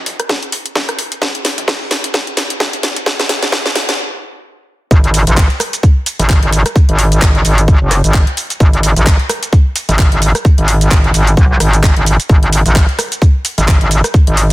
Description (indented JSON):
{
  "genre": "bass house",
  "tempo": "130 BPM",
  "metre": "4/4",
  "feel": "swing 57% on 16ths",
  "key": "G# phrygian",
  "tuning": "A4 = 440 Hz",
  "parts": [
    { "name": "dusty soul sampler-style drum kit", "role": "drums", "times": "0.1-14.5 s", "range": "hi-hat, snare drum", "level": "-28 LUFS", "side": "equal", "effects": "none" },
    { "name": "garage drum kit", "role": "drums", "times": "0.1-14.5 s", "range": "handclaps, hi-hat, rim click, shaker, snare drum", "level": "-17 LUFS", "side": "equal", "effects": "soft clipping on snare, high-pass filter on snare, high-pass filter on hats, high-pass filter on toms, high-pass filter on perc" },
    { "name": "electronic kick drum", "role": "drums", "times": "0.3-14.2 s", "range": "none", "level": "-9 LUFS", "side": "equal", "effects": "high-pass filter on kick" },
    { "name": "metallic wobble bass", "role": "bass", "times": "4.9-14.5 s", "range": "F#1 to B1", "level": "-11 LUFS", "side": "equal", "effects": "chorus, sidechain pumping" }
  ],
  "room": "little or no reverb",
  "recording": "dense, heavily limited modern master, high-pass filter",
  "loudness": "-10 LUFS",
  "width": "side -18 dB against mid",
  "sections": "0.0-4.9 A section; 4.9-14.5 B section",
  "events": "build-up 0.0-4.9; drum fill 0.0-4.0; stop 4.0-4.9; drop 4.9-14.5",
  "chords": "none",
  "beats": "0.29 0.76 | 1.22 1.68 2.14 2.60 | 3.06 3.52 3.99 4.45 | 4.91 5.37 5.83 6.29 | 6.76 7.22 7.68 8.14 | 8.60 9.06 9.53 9.99 | 10.45 10.91 11.37 11.83 | 12.29 12.76 13.22 13.68 | 14.14"
}